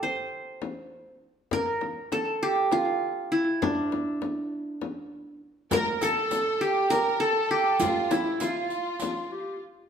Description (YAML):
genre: Turkish makam ensemble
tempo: 200 BPM (eighths)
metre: 7/8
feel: straight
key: unclear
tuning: A4 = 440 Hz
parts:
  - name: qanun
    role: melody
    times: 0.0-9.8 s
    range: D4 to C5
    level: -26 LUFS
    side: right 1 dB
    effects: slapback echo
  - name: frame drum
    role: percussion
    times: 0.0-9.2 s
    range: none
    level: -33 LUFS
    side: left 6 dB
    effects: none
  - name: warm clarinet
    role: second line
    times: 5.7-9.6 s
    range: E4 to Bb4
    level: -32 LUFS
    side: left 1 dB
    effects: none
  - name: warm symphonic violin section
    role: second line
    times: 5.7-9.6 s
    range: E4 to Bb4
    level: -34 LUFS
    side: left 4 dB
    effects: none
  - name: riq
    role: percussion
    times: 5.7-9.1 s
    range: none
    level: -36 LUFS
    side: right 3 dB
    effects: none
room: wet large studio reverb, RT60 1.4 s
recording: band playing live in one room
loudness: -24 LUFS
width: side -7 dB against mid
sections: 0.0-5.7 A section; 5.7-9.9 B section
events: none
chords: none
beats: 0.02 0.32 0.62 0.92 1.22 | 1.52 1.82 2.12 2.42 2.72 3.02 3.32 | 3.62 3.92 4.22 4.52 4.82 5.12 5.42 | 5.71 6.01 6.31 6.61 6.91 7.21 7.51 | 7.81 8.11 8.41 8.71 9.01 9.31 9.61